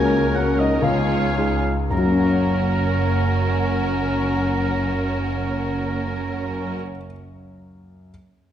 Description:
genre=classical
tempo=52-71 BPM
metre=3/4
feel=rubato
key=F# major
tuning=A4 = 440 Hz
part: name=clear grand piano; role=melody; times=0.0-8.1 s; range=C#2 to A#5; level=-24 LUFS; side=left 3 dB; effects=none
part: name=rich studio violin section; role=melody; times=0.0-6.8 s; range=A#4 to C#5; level=-32 LUFS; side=left 2 dB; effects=none
part: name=clear oboe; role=second line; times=0.0-6.8 s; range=A#4 to G#5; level=-29 LUFS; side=right 2 dB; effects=none
part: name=dark clarinet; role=second line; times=0.0-6.7 s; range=C#4 to A#4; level=-30 LUFS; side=equal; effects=none
part: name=warm symphonic violin section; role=second line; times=0.0-6.8 s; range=F#4 to A#4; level=-32 LUFS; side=equal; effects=none
part: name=warm studio viola section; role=accompaniment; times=0.0-6.8 s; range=C#4 to E#4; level=-30 LUFS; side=right 4 dB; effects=none
part: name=dark French horn section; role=sustained chords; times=0.0-6.8 s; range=A#3 to D#4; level=-29 LUFS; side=left 4 dB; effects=none
part: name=dark studio double bass section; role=bass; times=0.0-6.8 s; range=F#1 to C#2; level=-29 LUFS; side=right 3 dB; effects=none
part: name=rich studio cello section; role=bass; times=0.0-6.7 s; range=C#2 to F#2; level=-27 LUFS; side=right 3 dB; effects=none
part: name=timpani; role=percussion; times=0.0-6.7 s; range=F#2 to C#3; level=-37 LUFS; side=left 1 dB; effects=none
room=wet recital hall reverb, RT60 1.6 s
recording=dark, warm production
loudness=-19 LUFS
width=side -10 dB against mid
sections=0.0-1.9 A section; 1.9-8.1 B section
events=slowing down 0.0-1.9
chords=0.0 F#/C#; 0.8 C#9; 1.9 F#

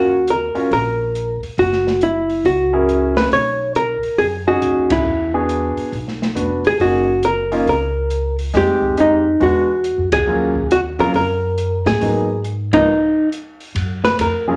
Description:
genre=jazz, small-group swing and bop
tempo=138 BPM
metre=4/4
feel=swing 65% on 8ths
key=Eb minor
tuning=A4 = 439 Hz
part: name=hollow-body jazz guitar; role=melody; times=0.0-14.6 s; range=Eb4 to C#5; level=-18 LUFS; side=equal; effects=none
part: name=warm concert grand piano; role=accompaniment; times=0.0-14.6 s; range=Db2 to B4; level=-23 LUFS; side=equal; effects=none
part: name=upright bass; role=bass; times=0.0-14.6 s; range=F1 to A2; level=-27 LUFS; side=equal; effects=none
part: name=open jazz drum kit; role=drums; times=0.3-14.3 s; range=hi-hat, kick drum, ride cymbal, snare drum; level=-30 LUFS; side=equal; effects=none
room=wet large studio reverb, RT60 0.9 s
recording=none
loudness=-17 LUFS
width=mono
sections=0.0-13.8 A section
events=band accent 4.8, 10.1, 12.7; stop 12.9-13.8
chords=0.0 Ebm9; 1.6 Gb7; 3.3 B69; 5.1 E9; 6.8 Gb6; 8.5 Fm9; 9.4 E9; 10.3 Ebm9; 12.0 Abm7; 12.9 N.C.; 13.8 F#maj7

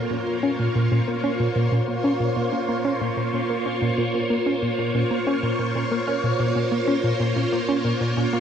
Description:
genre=ambient, sequencer-driven space music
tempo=93 BPM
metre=4/4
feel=straight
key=Bb minor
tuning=A4 = 445 Hz
part: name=phased string machine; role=sustained chords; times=0.0-8.4 s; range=Bb3 to Db5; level=-24 LUFS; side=equal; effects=ensemble chorus, phaser
part: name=tight sequenced synth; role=riff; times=0.0-8.4 s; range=Bb2 to Db4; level=-23 LUFS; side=equal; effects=chorus, cassette tape, tape echo
room=wet huge ambient reverb, RT60 7.8 s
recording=worn, warbling old tape, cassette tape, warbly pitch drift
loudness=-20 LUFS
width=side -8 dB against mid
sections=0.0-8.4 A section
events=none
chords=0.0 Bbm

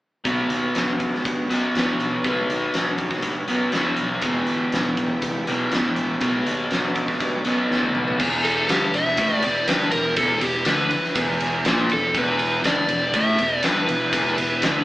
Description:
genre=blues rock power trio and southern rock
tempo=121 BPM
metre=4/4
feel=straight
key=E minor from 8.2 s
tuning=A4 = 440 Hz
part: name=overdriven semi-hollow guitar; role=riff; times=0.2-14.8 s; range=E2 to B3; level=-23 LUFS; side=equal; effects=none
part: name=fuzz picked electric bass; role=bass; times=0.3-14.8 s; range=E1 to G2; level=-31 LUFS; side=equal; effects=overdrive
part: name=big rock drum kit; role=drums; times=0.3-14.7 s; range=crash cymbal, hi-hat, kick drum, ride cymbal, snare drum, toms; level=-24 LUFS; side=equal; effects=none
part: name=bright tonewheel organ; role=sustained chords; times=4.2-14.8 s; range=B3 to F5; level=-31 LUFS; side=right 1 dB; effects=overdrive, chorus vibrato, slow rotary speaker
part: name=overdriven slide guitar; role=melody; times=8.4-14.8 s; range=G4 to E5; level=-22 LUFS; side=equal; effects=none
room=moderate stone room reverb, RT60 1.3 s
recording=band playing live in one room, AM radio sound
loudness=-19 LUFS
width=side -16 dB against mid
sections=0.2-8.2 A section; 8.2-14.8 B section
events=drum fill 7.7-8.2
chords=0.2 B5; 4.2 Em7; 6.2 B7#9; 8.2 Em

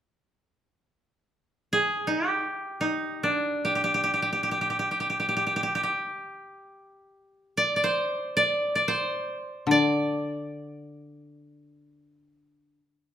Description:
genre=japanese traditional, Japanese chamber music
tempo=free time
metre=none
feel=none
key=unclear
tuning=A4 = 440 Hz
part: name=koto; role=melody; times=1.7-12.0 s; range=D4 to D5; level=-24 LUFS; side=right 1 dB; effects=none
part: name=koto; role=accompaniment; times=9.7-12.8 s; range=D3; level=-26 LUFS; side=left 3 dB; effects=none
room=moderate recital hall reverb, RT60 1.4 s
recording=none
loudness=-24 LUFS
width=side -10 dB against mid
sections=0.9-13.1 A section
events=none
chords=none

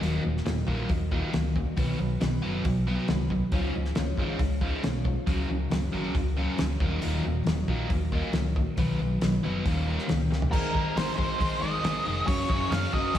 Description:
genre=classic rock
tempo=137 BPM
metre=4/4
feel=straight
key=unclear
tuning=A4 = 440 Hz
part: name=picked steel-string acoustic guitar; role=accompaniment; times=0.0-13.2 s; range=Ab2 to Db5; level=-34 LUFS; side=left 4 dB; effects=slapback echo
part: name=biting overdriven guitar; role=riff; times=0.0-13.2 s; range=Db2 to Cb4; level=-30 LUFS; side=right 1 dB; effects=none
part: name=hollow-body short-scale fingered electric bass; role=bass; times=0.0-13.2 s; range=Db1 to Gb2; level=-30 LUFS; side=equal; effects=none
part: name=damped 70s drum kit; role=drums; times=0.0-13.2 s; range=crash cymbal, hi-hat, kick drum, snare drum, toms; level=-30 LUFS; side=equal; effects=none
part: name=octave-fuzz lead guitar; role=melody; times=10.5-13.2 s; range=Bb4 to F5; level=-29 LUFS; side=right 1 dB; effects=distortion, slapback echo
room=wet recital hall reverb, RT60 1.6 s, studio ambience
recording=big arena sound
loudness=-25 LUFS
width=side -11 dB against mid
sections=0.0-10.5 A section; 10.5-13.2 B section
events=drum fill 10.3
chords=0.0 Ebm; 1.8 Cb; 3.5 Db; 5.3 Gb/Db; 6.8 Ebm; 8.8 Cb; 9.7 Eb7; 10.5 Ab; 12.3 Gbsus2

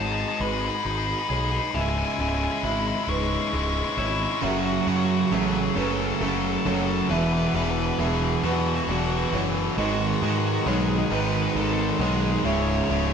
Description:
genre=post-rock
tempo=45 BPM (dotted quarters)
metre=6/8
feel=straight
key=C# minor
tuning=A4 = 441 Hz
part: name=dark smooth lead guitar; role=melody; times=0.0-13.1 s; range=F#4 to C#6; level=-31 LUFS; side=equal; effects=overdrive
part: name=hand-pumped harmonium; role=sustained chords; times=0.0-13.1 s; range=C#3 to G#5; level=-35 LUFS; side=right 1 dB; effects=none
part: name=felt-muted upright piano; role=arpeggios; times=0.0-13.1 s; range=B4 to E5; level=-35 LUFS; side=right 6 dB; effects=none
part: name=twangy electric guitar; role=arpeggios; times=0.0-13.1 s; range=C#2 to G#4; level=-31 LUFS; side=left 3 dB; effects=none
part: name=tight distorted guitar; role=riff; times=0.0-13.1 s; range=C#2 to G#4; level=-28 LUFS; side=left 7 dB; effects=distortion
part: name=fuzz picked electric bass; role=bass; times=0.0-13.1 s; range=C#1 to G#2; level=-28 LUFS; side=equal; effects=overdrive
part: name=crunchy overdriven guitar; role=riff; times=4.4-13.1 s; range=C#2 to G#3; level=-26 LUFS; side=right 8 dB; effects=spring reverb
room=wet stone room reverb, RT60 1.1 s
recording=band playing live in one room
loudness=-22 LUFS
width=side -7 dB against mid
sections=0.0-4.4 A section; 4.4-13.1 B section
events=build-up 0.0-4.4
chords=0.0 G#m7; 1.7 C#m; 4.4 F#m7; 7.1 Eadd9; 9.8 G#m7; 12.4 C#m

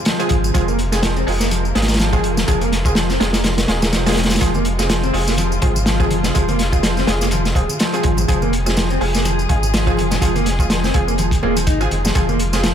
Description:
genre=breakbeat, breaks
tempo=124 BPM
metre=4/4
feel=swing 56% on 16ths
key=F minor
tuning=A4 = 440 Hz
part: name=muted chamber string section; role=sustained chords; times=0.0-12.7 s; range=C3 to Ab4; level=-27 LUFS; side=left 3 dB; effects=sidechain pumping
part: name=mellow electric guitar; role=riff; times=0.1-12.7 s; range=F3 to Eb4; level=-22 LUFS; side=equal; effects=overdrive, vintage 12-bit sampler grit, low-pass filter, tape echo
part: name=crunchy breakbeat drum kit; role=drums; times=0.1-12.7 s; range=hi-hat, kick drum, snare drum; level=-19 LUFS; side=equal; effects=none
part: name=tambourine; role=drums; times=0.1-12.7 s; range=none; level=-29 LUFS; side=left 1 dB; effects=none
part: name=orchestra-hit-like synth stab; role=stabs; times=0.2-12.6 s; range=Ab3 to Ab4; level=-23 LUFS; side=right 1 dB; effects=built-in reverb, tape echo
part: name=saturated sub bass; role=bass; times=0.3-12.7 s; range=Eb1 to Ab1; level=-21 LUFS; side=equal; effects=none
part: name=congas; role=percussion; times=4.5-12.4 s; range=none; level=-29 LUFS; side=right 1 dB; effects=none
room=small room ambience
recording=none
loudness=-15 LUFS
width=side -9 dB against mid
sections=0.0-12.7 A section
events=none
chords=0.0 Fm

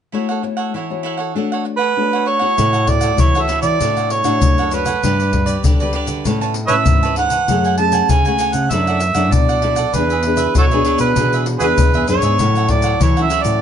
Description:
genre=samba and choro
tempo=98 BPM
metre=4/4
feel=straight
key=A major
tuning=A4 = 437 Hz
part: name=cavaquinho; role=accompaniment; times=0.1-13.6 s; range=D4 to A5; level=-25 LUFS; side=right 6 dB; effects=none
part: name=nylon-string guitar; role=accompaniment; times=0.1-13.6 s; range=A2 to C#5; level=-22 LUFS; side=left 6 dB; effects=none
part: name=mellow harmonica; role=melody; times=1.8-13.6 s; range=F#4 to A5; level=-17 LUFS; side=right 4 dB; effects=plate reverb
part: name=nylon-string guitar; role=bass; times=2.6-13.6 s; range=D2 to E3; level=-20 LUFS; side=equal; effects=none
part: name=egg shaker, surdo and pandeiro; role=percussion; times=2.6-13.6 s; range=none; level=-18 LUFS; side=left 2 dB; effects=none
room=moderate studio ambience, RT60 0.5 s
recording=nothing above 10.4 kHz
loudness=-14 LUFS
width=side -9 dB against mid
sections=0.1-2.6 A section; 2.6-13.6 B section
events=none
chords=0.1 A6; 1.4 Dmaj7/A; 2.6 A6; 3.8 Dmaj7/A; 5.0 G; 6.3 Aadd9; 7.5 F#madd9; 8.7 Dadd9/F#; 9.9 E7; 12.4 A6

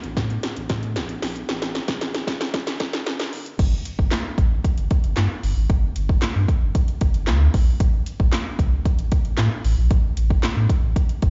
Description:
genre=dance-pop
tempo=114 BPM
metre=4/4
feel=straight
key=unclear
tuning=A4 = 440 Hz
part: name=sub bass with octave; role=bass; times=0.0-11.3 s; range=G1 to A2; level=-24 LUFS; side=equal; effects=sidechain pumping
part: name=deep house drum kit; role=drums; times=0.0-11.3 s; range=crash cymbal, handclaps, hi-hat, kick drum, snare drum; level=-24 LUFS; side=equal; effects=overdrive
room=little or no reverb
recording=played on a big sound system in a bare room, stone room reverb, high-pass filter, nothing above 7.6 kHz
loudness=-22 LUFS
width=mono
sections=0.0-3.6 A section; 3.6-11.3 B section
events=build-up 0.0-3.6; drum fill 0.0-3.6; filter sweep 0.0-3.6; drop 3.6-11.3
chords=none

